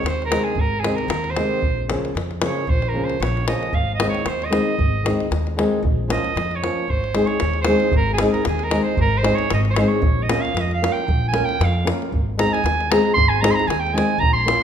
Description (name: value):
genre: balkan folk, Balkan wedding band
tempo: 114 BPM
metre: 2/4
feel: swing 54% on 16ths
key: Ab major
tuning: A4 = 439 Hz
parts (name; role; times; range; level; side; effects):
- breathy soprano saxophone; second line; 0.0-14.6 s; Ab4 to C6; -22 LUFS; right 4 dB; none
- upright bass; bass; 0.0-14.5 s; Ab1 to F2; -24 LUFS; equal; none
- davul; percussion; 0.1-14.6 s; none; -24 LUFS; left 1 dB; none
- flamenco guitar; accompaniment; 0.3-14.6 s; C3 to Bb4; -22 LUFS; left 2 dB; none
room: moderate recital hall reverb, RT60 1.4 s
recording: minimal, uncompressed stereo recording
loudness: -17 LUFS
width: side -8 dB against mid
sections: 0.0-14.6 A section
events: soprano saxophone solo 0.0-14.6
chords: 0.0 Ab; 1.6 Bbm; 3.7 Ab; 5.8 Bbm; 6.9 Ab; 10.0 Bbm; 12.1 Ab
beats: 0.06 | 0.58 1.11 | 1.63 2.16 | 2.68 3.21 | 3.73 4.26 | 4.78 5.31 | 5.83 6.36 | 6.89 7.41 | 7.94 8.46 | 8.99 9.51 | 10.04 10.56 | 11.08 11.61 | 12.13 12.65 | 13.17 13.69 | 14.21